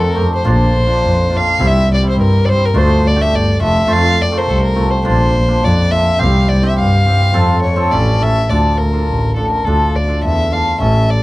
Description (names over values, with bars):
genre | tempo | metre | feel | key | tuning
klezmer | 104 BPM | 2/4 | straight | F major | A4 = 440 Hz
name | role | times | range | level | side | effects
dark violin | melody | 0.0-11.2 s | A4 to F5 | -17 LUFS | left 1 dB | none
warm double bass | bass | 0.0-11.1 s | F1 to G2 | -14 LUFS | equal | none
cimbalom | accompaniment | 0.1-11.0 s | G3 to A4 | -19 LUFS | equal | none
room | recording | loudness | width
little or no reverb | dry, close 1970s-style studio recording | -11 LUFS | side -18 dB against mid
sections
0.0-8.5 A section; 8.5-11.2 B section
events
none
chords
0.4 Bb; 1.6 C; 2.7 Dm; 3.9 F; 5.0 Bb; 6.2 C; 7.3 F; 7.9 A; 8.5 Dm